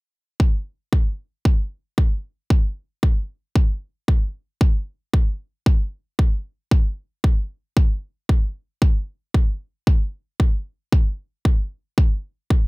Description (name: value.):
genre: nu-disco.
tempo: 114 BPM.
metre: 4/4.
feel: swing 54% on 16ths.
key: none.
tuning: none.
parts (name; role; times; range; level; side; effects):
electronic kick drum; drums; 0.4-12.6 s; none; -17 LUFS; equal; none.
room: little or no reverb.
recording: none.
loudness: -20 LUFS.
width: side -25 dB against mid.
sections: 0.4-12.7 A section.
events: none.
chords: none.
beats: | 0.40 0.92 1.45 1.98 | 2.50 3.03 3.56 4.08 | 4.61 5.13 5.66 6.19 | 6.71 7.24 7.77 8.29 | 8.82 9.35 9.87 10.40 | 10.92 11.45 11.98 12.50.